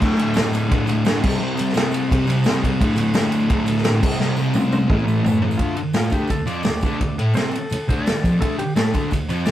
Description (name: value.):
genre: garage rock duo or trio.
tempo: 172 BPM.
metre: 4/4.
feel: straight.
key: D minor.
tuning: A4 = 439 Hz.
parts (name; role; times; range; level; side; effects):
thick fuzz guitar; riff; 0.0-9.5 s; D2 to C4; -19 LUFS; equal; distortion.
vintage drum kit; drums; 0.0-9.5 s; crash cymbal, kick drum, ride cymbal, snare drum, toms; -21 LUFS; equal; none.
tambourine; percussion; 0.2-9.5 s; none; -44 LUFS; right 7 dB; none.
clean lap steel guitar; melody; 5.6-9.5 s; F4 to D5; -29 LUFS; equal; none.
room: light reverb.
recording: rough rehearsal-room recording.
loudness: -17 LUFS.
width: side -12 dB against mid.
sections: 0.0-5.6 A section; 5.6-9.5 B section.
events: drum fill 4.2-5.6; electric slide guitar solo 5.6-9.5.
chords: 0.0 D5; 1.2 C5; 2.8 D5; 4.0 C5; 4.9 A5; 5.6 Dm.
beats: | 0.02 0.36 0.71 1.06 | 1.41 1.76 2.10 2.45 | 2.80 3.15 3.50 3.85 | 4.19 4.54 4.89 5.24 | 5.59 5.95 6.30 6.65 | 7.00 7.35 7.71 8.06 | 8.41 8.76 9.11 9.46.